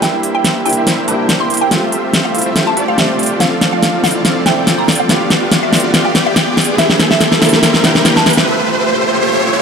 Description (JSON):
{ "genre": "future bass", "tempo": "142 BPM", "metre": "4/4", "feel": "swing 54% on 16ths, half-time", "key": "unclear", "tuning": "A4 = 440 Hz", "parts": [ { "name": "mallet-like synth pluck", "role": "melody", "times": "0.0-8.5 s", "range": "E5 to C6", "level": "-20 LUFS", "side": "right 1 dB", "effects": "phaser, analog chorus, ping-pong delay" }, { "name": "felt-muted upright piano", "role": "accompaniment", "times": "0.0-8.5 s", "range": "F3 to E5", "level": "-21 LUFS", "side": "left 1 dB", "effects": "none" }, { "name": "shimmering ambient pad", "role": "sustained chords", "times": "0.0-8.5 s", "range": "E3 to E5", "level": "-25 LUFS", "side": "equal", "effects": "none" }, { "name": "supersaw chords", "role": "riff", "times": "0.0-9.6 s", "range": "A3 to G5", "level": "-17 LUFS", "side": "right 1 dB", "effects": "low-pass filter" }, { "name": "big-room dance drum kit", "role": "drums", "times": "0.0-8.5 s", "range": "hi-hat, snare drum", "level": "-13 LUFS", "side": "left 1 dB", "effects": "none" }, { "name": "riser", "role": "sound effects", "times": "1.5-9.6 s", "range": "none", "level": "-20 LUFS", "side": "right 1 dB", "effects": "none" } ], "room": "wet lush hall reverb, RT60 2.2 s", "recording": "none", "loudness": "-10 LUFS", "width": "side -6 dB against mid", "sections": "0.0-9.6 A section", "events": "build-up 0.0-9.6; drum fill 0.0-8.5; filter sweep on supersaw synth 0.0-9.6; riser 1.5-9.6; break 8.5-9.6", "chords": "0.0 C7; 1.7 Fmaj9; 5.1 G7; 6.8 C7; 8.5 Fmaj9", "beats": "| 0.02 0.45 0.87 1.29 | 1.71 2.14 2.56 2.98 | 3.40 3.83 4.25 4.67 | 5.09 5.52 5.94 6.36 | 6.78 7.21 7.63 8.05 | 8.47 8.90 9.32" }